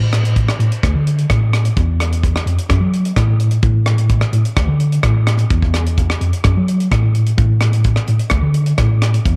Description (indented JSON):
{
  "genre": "highlife guitar band",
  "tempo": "128 BPM",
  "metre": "4/4",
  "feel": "straight",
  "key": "unclear",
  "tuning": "A4 = 440 Hz",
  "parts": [
    { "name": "mellow tine electric piano", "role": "bass", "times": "0.0-9.4 s", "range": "D2 to F#3", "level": "-16 LUFS", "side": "equal", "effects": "none" },
    { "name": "tight funk drum kit", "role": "drums", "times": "0.1-9.4 s", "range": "hi-hat, kick drum, rim click", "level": "-21 LUFS", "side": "equal", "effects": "none" }
  ],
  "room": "little or no reverb",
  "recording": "none",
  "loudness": "-15 LUFS",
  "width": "mono",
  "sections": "0.0-9.4 A section",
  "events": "none",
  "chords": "none",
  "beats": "0.36 0.83 1.29 | 1.76 2.23 2.70 3.17 | 3.64 4.10 4.57 5.04 | 5.51 5.98 6.44 6.91 | 7.38 7.85 8.31 8.78 | 9.25"
}